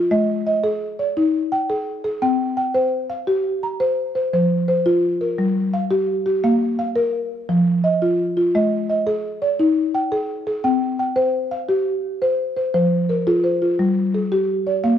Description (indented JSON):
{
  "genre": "southern african traditional",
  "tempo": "114 BPM (dotted quarters)",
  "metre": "12/8",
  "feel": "straight",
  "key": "F equiheptatonic",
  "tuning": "A4 = 439 Hz",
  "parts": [
    { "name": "buzzing marimba with soft mallets", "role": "solo", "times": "0.0-15.0 s", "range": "F3 to Bb5", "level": "-18 LUFS", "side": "equal", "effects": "none" }
  ],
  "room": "moderate recital hall reverb, RT60 1.8 s",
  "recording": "dark, warm production",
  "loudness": "-18 LUFS",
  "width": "side -9 dB against mid",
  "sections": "0.0-12.7 A section; 12.7-15.0 B section",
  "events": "none",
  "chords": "0.1 Ab5; 2.2 C5; 4.3 F5; 5.4 Gm; 6.4 Bb5; 7.5 Ebsus2/F; 8.5 Ab5; 10.6 C5; 12.7 Fm; 13.8 G5",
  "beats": "| 0.12 0.64 1.17 1.70 | 2.22 2.75 3.28 3.80 | 4.33 4.86 5.38 5.91 | 6.43 6.96 7.49 8.01 | 8.54 9.06 9.59 10.12 | 10.64 11.16 11.69 12.21 | 12.74 13.27 13.79 14.31 | 14.84"
}